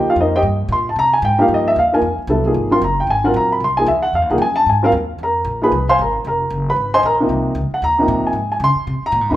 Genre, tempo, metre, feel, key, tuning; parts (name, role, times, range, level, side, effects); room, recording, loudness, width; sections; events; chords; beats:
modal jazz; 227 BPM; 4/4; swing 60% on 8ths; F phrygian; A4 = 440 Hz
dark upright piano; accompaniment; 0.0-9.4 s; C3 to C6; -15 LUFS; equal
upright bass; bass; 0.0-9.4 s; F1 to Db3; -22 LUFS; equal
moderate large studio reverb, RT60 1.2 s; band playing live in one room; -14 LUFS; side -14 dB against mid
0.0-2.0 A section; 2.0-9.4 A section
0.0 Cm7; 2.0 Fm7; 6.2 Ab/F
0.18 0.45 0.71 | 0.97 1.24 1.50 1.76 | 2.03 2.29 2.56 2.82 | 3.08 3.35 3.61 3.87 | 4.14 4.40 4.67 4.93 | 5.19 5.46 5.72 5.99 | 6.25 6.51 6.78 7.04 | 7.30 7.57 7.83 8.10 | 8.36 8.62 8.89 9.15